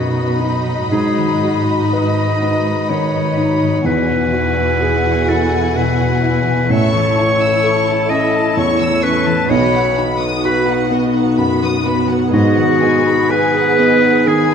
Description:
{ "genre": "cinematic, emotional film score for orchestra", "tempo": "63 BPM", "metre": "3/4", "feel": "rubato", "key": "unclear", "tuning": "A4 = 440 Hz", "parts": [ { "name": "clear clarinet", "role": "second line", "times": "0.0-14.5 s", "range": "D#4 to D#5", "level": "-17 LUFS", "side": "left 1 dB", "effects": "none" }, { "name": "warm symphonic violin section", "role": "second line", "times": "0.0-14.5 s", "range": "D#5 to E6", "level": "-22 LUFS", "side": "left 3 dB", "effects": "none" }, { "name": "warm baby grand piano", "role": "accompaniment", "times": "0.0-14.5 s", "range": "A1 to B4", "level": "-19 LUFS", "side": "equal", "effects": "none" }, { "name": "warm symphonic viola section", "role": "accompaniment", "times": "0.0-14.5 s", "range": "B3 to A4", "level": "-21 LUFS", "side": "right 4 dB", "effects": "none" }, { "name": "concert harp", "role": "arpeggios", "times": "0.0-14.5 s", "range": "E2 to G#5", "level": "-21 LUFS", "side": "left 5 dB", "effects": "none" }, { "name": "warm symphonic cello section", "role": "bass", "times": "0.0-13.1 s", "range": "E2 to B2", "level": "-21 LUFS", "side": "right 3 dB", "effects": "none" } ], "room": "moderate scoring stage reverb, RT60 1.8 s", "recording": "none", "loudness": "-13 LUFS", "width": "side -7 dB against mid", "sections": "0.0-14.5 A section", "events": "none", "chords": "0.0 B; 0.9 G#m7; 3.9 Eadd9; 6.7 A; 9.5 B; 12.3 G#m7" }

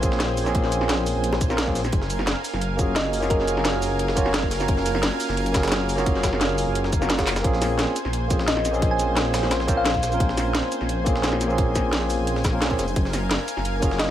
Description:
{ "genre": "liquid drum and bass", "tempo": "174 BPM", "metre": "4/4", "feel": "straight", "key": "Bb minor", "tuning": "A4 = 439 Hz", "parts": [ { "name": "barky tine electric piano", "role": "accompaniment", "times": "0.0-14.1 s", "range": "Bb3 to Db5", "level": "-26 LUFS", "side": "equal", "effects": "medium stereo tremolo, ping-pong delay" }, { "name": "lush unison pad", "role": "sustained chords", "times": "0.0-14.1 s", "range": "Bb4 to Ab5", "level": "-30 LUFS", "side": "right 1 dB", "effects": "chorus" }, { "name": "dark detuned saw bass", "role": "bass", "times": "0.0-14.1 s", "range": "F1 to Bb1", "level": "-26 LUFS", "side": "equal", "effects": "none" }, { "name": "breakbeat sampler-style drum kit", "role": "drums", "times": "0.0-14.1 s", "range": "hi-hat, snare drum", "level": "-31 LUFS", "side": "equal", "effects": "high-pass filter on snare, high-pass filter on hats" }, { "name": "drum and bass drum kit", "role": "drums", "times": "0.0-14.1 s", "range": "handclaps, hi-hat, shaker, snare drum", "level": "-27 LUFS", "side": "equal", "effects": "none" }, { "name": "electronic kick drum", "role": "drums", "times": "0.0-13.9 s", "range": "none", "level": "-25 LUFS", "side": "equal", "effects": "none" }, { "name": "bongos", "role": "percussion", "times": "1.3-1.4, 7.2-7.3 s", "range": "none", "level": "-30 LUFS", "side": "right 1 dB", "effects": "none" }, { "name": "thumb-piano-like synth pluck", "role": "melody", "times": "3.0-3.6, 8.5-10.3, 14.0-14.1 s", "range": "Bb4 to Ab5", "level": "-30 LUFS", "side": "left 1 dB", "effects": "chorus, tape echo" } ], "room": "light reverb", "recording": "none", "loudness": "-20 LUFS", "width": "side -11 dB against mid", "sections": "0.0-7.4 A section; 7.4-14.1 A section", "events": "drop 0.0-7.4, 7.4-14.1; drum fill 7.3", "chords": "0.0 Bbm9; 1.9 Gbmaj9; 7.4 Bbm9; 13.0 Gbmaj9" }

